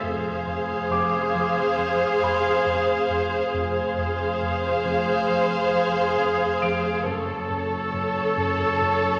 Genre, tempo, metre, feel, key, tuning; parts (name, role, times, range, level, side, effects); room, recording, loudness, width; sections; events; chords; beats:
cinematic, suspense film score; 68 BPM; 4/4; straight; A4 = 440 Hz
warm chamber violin section; melody; 0.0-9.2 s; C#5 to F5; -32 LUFS; equal
rich chamber violin section; second line; 0.0-9.2 s; A4 to C5; -29 LUFS; equal
rich chamber viola section; accompaniment; 0.0-9.2 s; Ab4 to A4; -28 LUFS; equal
smooth gliding synth bass; riff; 0.0-9.1 s; F2 to F#2; -36 LUFS; equal
rich studio double bass section; bass; 0.0-9.2 s; F1 to F#1; -37 LUFS; equal
warm studio cello section; bass; 0.0-9.2 s; F2 to F#2; -39 LUFS; equal
dark concert grand piano; texture; 0.0-9.2 s; C5 to D7; -34 LUFS; equal
wet scoring stage reverb, RT60 1.9 s; -23 LUFS; mono
0.0-9.2 A section
0.0 Fm; 7.1 F#m
| 0.03 0.91 1.79 2.66 | 3.54 4.42 5.30 6.18 | 7.06 7.94 8.81